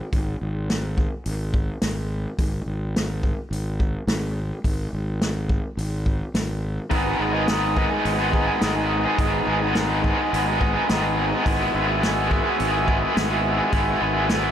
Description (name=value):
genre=psychedelic rock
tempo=106 BPM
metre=4/4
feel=straight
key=G# minor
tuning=A4 = 442 Hz
part: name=tanpura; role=drone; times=0.0-4.2 s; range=G#2 to G#3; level=-49 LUFS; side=left 1 dB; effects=none
part: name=fuzz fingered electric bass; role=bass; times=0.1-14.5 s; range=G#1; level=-26 LUFS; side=equal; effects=overdrive
part: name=vintage drum kit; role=drums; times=0.1-14.4 s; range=hi-hat, kick drum, snare drum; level=-25 LUFS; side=equal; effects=none
part: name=hand-pumped harmonium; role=sustained chords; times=6.9-14.5 s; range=F#4 to E5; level=-30 LUFS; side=right 6 dB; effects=none
part: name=raw garage guitar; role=riff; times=6.9-14.5 s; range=G#2 to G#4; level=-21 LUFS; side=equal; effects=overdrive, harmonic tremolo
room=light reverb, small room ambience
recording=none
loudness=-20 LUFS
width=side -10 dB against mid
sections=0.0-14.5 A section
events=none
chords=0.0 G#5; 2.4 N.C.; 6.9 G#m; 11.5 Eadd9/G#